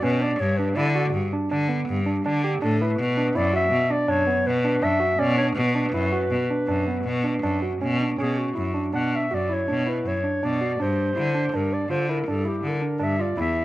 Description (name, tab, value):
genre	contemporary instrumental, chamber music in an uneven meter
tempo	162 BPM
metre	7/4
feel	straight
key	B minor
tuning	A4 = 440 Hz
part	dark clarinet	melody	0.0-13.6 s	F#4 to F#5	-26 LUFS	left 1 dB	none
part	barky tine electric piano	arpeggios	0.0-13.6 s	B3 to G4	-26 LUFS	right 2 dB	none
part	bright cello	bass	0.0-13.6 s	E2 to D3	-25 LUFS	left 1 dB	none
room	light reverb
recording	close, detailed microphones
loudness	-21 LUFS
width	side -16 dB against mid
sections	0.0-8.2 A section; 8.2-13.6 B section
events	none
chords	0.4 G; 3.0 Bm; 10.8 Gm